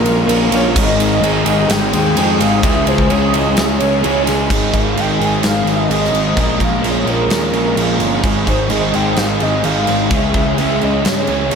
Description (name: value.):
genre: rock, shoegaze and dream pop.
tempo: 128 BPM.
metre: 4/4.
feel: straight.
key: Ab major.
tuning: A4 = 440 Hz.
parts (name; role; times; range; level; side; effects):
pure sine lead; melody; 0.0-11.6 s; Bb4 to Ab5; -20 LUFS; right 1 dB; chorus, tremolo, slapback echo.
deep dark ambient pad; sustained chords; 0.0-11.6 s; Ab4 to Fb6; -25 LUFS; right 2 dB; chorus, built-in reverb.
electric guitar through a small old amp; arpeggios; 0.0-11.6 s; Eb3 to Ab4; -24 LUFS; right 1 dB; none.
overdriven semi-hollow guitar; riff; 0.0-11.6 s; Ab2 to Bb4; -20 LUFS; right 12 dB; reverse reverb.
thick fuzz guitar; riff; 0.0-11.6 s; Ab2 to Db4; -20 LUFS; left 12 dB; distortion, wide subtle chorus.
fuzz picked electric bass; bass; 0.0-11.6 s; G1 to G2; -20 LUFS; equal; overdrive.
huge arena drum kit; drums; 0.1-11.6 s; crash cymbal, kick drum, ride cymbal, snare drum; -19 LUFS; equal; none.
room: light reverb, small room ambience.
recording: none.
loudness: -12 LUFS.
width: side -6 dB against mid.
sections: 0.0-4.5 A section; 4.5-11.6 B section.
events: none.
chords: 0.0 Bbm7; 0.8 Abmaj7; 2.6 Dbm; 4.5 Abmaj7; 6.4 Bbm7; 8.2 Abmaj7; 10.1 Dbm.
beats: 0.29 | 0.76 1.23 1.70 2.16 | 2.63 3.10 3.56 4.03 | 4.50 4.97 5.43 5.90 | 6.37 6.84 7.30 7.77 | 8.24 8.71 9.18 9.64 | 10.11 10.58 11.05 11.52.